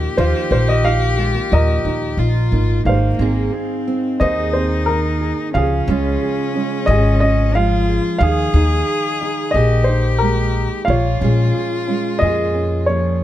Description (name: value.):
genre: acoustic folk-pop ballad.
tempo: 90 BPM.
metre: 4/4.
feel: straight.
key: Ab major.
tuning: A4 = 438 Hz.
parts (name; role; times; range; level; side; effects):
rich cello; second line; 0.0-13.2 s; Bb3 to Ab4; -23 LUFS; left 5 dB; none.
fingerpicked steel-string acoustic guitar; accompaniment; 0.0-13.2 s; Ab2 to Ab4; -24 LUFS; right 6 dB; none.
felt-muted upright piano; arpeggios; 0.0-13.2 s; Eb3 to Ab4; -27 LUFS; right 2 dB; none.
upright bass; bass; 0.0-13.2 s; Ab1 to F2; -17 LUFS; equal; none.
warm upright piano; melody; 0.2-13.2 s; F4 to F5; -21 LUFS; equal; none.
room: light reverb.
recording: close, detailed microphones.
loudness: -15 LUFS.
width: side -13 dB against mid.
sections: 0.0-2.9 A section; 2.9-13.2 B section.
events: none.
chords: 0.0 Ebsus2; 2.9 Abadd9; 5.5 Db; 8.2 Ebsus4; 10.9 Bbm7.